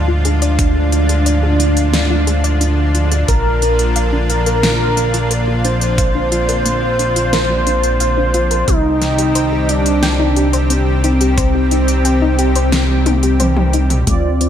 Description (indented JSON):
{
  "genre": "synthwave",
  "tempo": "89 BPM",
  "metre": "4/4",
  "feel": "straight",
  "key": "C minor",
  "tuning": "A4 = 440 Hz",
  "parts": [
    { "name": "wide unison lead", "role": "melody", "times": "0.0-13.9 s", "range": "C4 to C5", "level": "-18 LUFS", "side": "right 1 dB", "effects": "digital delay" },
    { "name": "lush unison pad", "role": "sustained chords", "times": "0.0-14.5 s", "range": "Ab2 to G4", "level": "-21 LUFS", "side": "left 1 dB", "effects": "chorus, sidechain pumping" },
    { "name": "soft round pluck", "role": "arpeggios", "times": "0.0-14.5 s", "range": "A3 to G5", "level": "-24 LUFS", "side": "left 4 dB", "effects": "chorus, digital delay" },
    { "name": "chorused synth bass", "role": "bass", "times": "0.0-14.5 s", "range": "Bb1 to D2", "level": "-16 LUFS", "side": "equal", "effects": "tube saturation" },
    { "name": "pop drum kit", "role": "drums", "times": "0.2-14.5 s", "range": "hi-hat, snare drum, toms", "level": "-20 LUFS", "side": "left 1 dB", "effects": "gated reverb" },
    { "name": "electronic kick drum", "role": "drums", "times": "0.6-14.2 s", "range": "none", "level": "-16 LUFS", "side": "equal", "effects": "none" },
    { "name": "analog synth brass", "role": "stabs", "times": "14.1-14.5 s", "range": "C4 to D5", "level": "-18 LUFS", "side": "right 3 dB", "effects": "chorus, digital delay" }
  ],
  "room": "light reverb, digital ambience",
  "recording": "none",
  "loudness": "-12 LUFS",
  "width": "side -9 dB against mid",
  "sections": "0.0-14.1 A section",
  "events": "filter sweep on synth arpeggio sound 0.0-14.1; drum fill 13.1-14.1, 14.1-14.5",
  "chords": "0.0 Ddim; 3.3 Bb; 8.7 Cm"
}